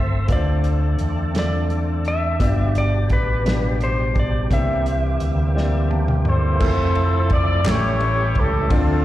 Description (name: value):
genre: slow gospel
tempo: 57 BPM (dotted quarters)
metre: 6/8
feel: straight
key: F major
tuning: A4 = 444 Hz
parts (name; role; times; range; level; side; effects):
- clean lap steel guitar; melody; 0.0-5.9 s; B4 to E5; -26 LUFS; equal; plate reverb, slapback echo
- warm grand piano; accompaniment; 0.0-9.0 s; G2 to A5; -27 LUFS; left 3 dB; slapback echo
- bright tonewheel organ; sustained chords; 0.0-9.0 s; B2 to E5; -28 LUFS; right 3 dB; fast rotary speaker, chorus vibrato
- fingered electric bass; bass; 0.0-9.0 s; F1 to E2; -20 LUFS; equal; none
- warm soul drum kit; drums; 0.3-8.9 s; crash cymbal, hi-hat, kick drum, ride cymbal, snare drum, toms; -22 LUFS; equal; none
- mellow horn section; melody; 6.3-9.0 s; C4 to D5; -22 LUFS; left 1 dB; plate reverb, slapback echo
- group handclap; percussion; 7.7-8.0 s; none; -31 LUFS; left 1 dB; none
room: little or no reverb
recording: live gig heard through the venue's PA, recital hall reverb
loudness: -17 LUFS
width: side -14 dB against mid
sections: 0.0-6.6 A section; 6.6-9.0 B section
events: drum fill 5.6-6.6; grand piano fill 5.6-6.6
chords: 0.3 Dm7; 2.4 G7; 4.5 C7; 6.6 Fmaj7; 7.7 A7